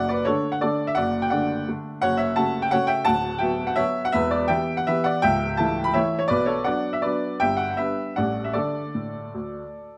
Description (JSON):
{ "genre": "classical, piano waltz", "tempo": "147-178 BPM", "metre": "3/4", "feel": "rubato", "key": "D major", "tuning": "A4 = 440 Hz", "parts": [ { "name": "clear upright piano", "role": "solo", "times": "0.0-10.0 s", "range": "C#1 to B5", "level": "-24 LUFS", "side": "equal", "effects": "none" } ], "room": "moderate recital hall reverb, RT60 1.5 s", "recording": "close, detailed microphones", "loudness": "-24 LUFS", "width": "mono", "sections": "0.0-10.0 A section", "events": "none", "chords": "0.0 D/F#; 2.0 F#m; 3.1 Bm/D; 4.1 Em; 5.2 A/C#; 6.3 Bm; 7.4 Em7/G; 8.2 A7; 8.5 D5" }